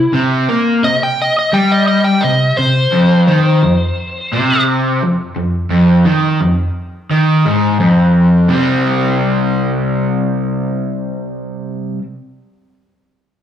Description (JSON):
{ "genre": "rock", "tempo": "86 BPM", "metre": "4/4", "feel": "straight", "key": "unclear", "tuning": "A4 = 440 Hz", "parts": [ { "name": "overdriven slide guitar", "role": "melody", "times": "0.0-4.6 s", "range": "E4 to G5", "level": "-15 LUFS", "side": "left 1 dB", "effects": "slapback echo" }, { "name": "overdriven semi-hollow guitar", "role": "riff", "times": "0.0-12.0 s", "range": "F2 to C4", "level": "-12 LUFS", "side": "equal", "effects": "spring reverb, slapback echo" } ], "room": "wet club reverb, RT60 0.5 s", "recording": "live gig heard through the venue's PA, club reverb", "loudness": "-11 LUFS", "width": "side -9 dB against mid", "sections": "0.0-8.5 A section; 8.5-11.3 B section", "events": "none", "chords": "0.0 C5; 2.9 F5; 8.5 C5" }